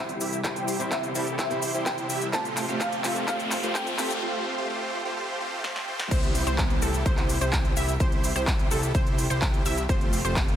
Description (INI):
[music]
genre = EDM, festival progressive house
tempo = 127 BPM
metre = 4/4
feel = straight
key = C major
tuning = A4 = 440 Hz
[part]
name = thumb-piano-like synth pluck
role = melody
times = 0.0-4.2 s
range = E5 to A5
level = -33 LUFS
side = equal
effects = ensemble chorus, dub echo
[part]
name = fingerpicked swing-style acoustic guitar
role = accompaniment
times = 0.0-4.1 s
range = C3 to G4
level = -37 LUFS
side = equal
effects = none
[part]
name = lush unison pad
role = sustained chords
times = 0.0-4.2 s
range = C3 to G4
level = -36 LUFS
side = left 1 dB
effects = chorus, phaser, sidechain pumping
[part]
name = dense compressed supersaw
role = riff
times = 0.0-10.6 s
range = A3 to E5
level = -30 LUFS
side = right 1 dB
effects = sidechain pumping, low-pass filter, dub echo
[part]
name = fat analog bass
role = bass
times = 0.0-10.6 s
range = F1 to C2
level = -32 LUFS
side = equal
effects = sidechain pumping, high-pass filter
[part]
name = riser, swell and downlifter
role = sound effects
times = 1.1-9.9 s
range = none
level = -37 LUFS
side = equal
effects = none
[part]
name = big-room dance drum kit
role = drums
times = 0.1-10.6 s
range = crash cymbal, handclaps, hi-hat, shaker, snare drum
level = -31 LUFS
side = equal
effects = overdrive
[part]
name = electronic kick drum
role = drums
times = 0.4-10.5 s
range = none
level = -27 LUFS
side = equal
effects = high-pass filter on kick, high-pass filter on room
[part]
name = wide unison pluck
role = arpeggios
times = 6.1-10.6 s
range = A4 to E5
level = -33 LUFS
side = right 1 dB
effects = sidechain pumping, dub echo
[sound]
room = light reverb, digital ambience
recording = dense, heavily limited modern master, high-pass filter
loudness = -24 LUFS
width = side -10 dB against mid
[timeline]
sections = 0.0-6.1 A section; 6.1-10.6 B section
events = build-up 0.0-6.1; drum fill 0.0-4.2, 5.6-6.1; filter sweep on supersaw synth 0.0-6.1; riser 1.1-4.2; break 4.2-6.1; drop 6.1-10.6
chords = 0.0 C; 2.3 Fadd9; 6.1 C; 9.9 Fadd9